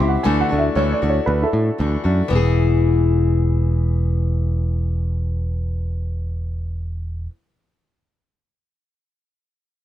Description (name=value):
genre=rock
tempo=117 BPM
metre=4/4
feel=straight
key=E major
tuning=A4 = 440 Hz
part: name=dark upright piano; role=second line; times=0.0-2.3 s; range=E4 to G#5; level=-23 LUFS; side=right 3 dB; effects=none
part: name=picked steel-string acoustic guitar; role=accompaniment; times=0.0-7.4 s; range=D3 to G#4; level=-23 LUFS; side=left 6 dB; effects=none
part: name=picked electric bass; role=bass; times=0.0-7.3 s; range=E1 to A2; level=-19 LUFS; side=right 1 dB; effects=none
room=light reverb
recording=dark, warm production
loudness=-17 LUFS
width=side -12 dB against mid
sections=0.0-2.3 A section; 2.3-6.4 B section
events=upright piano solo 0.0-2.3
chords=0.2 Dadd9; 2.3 E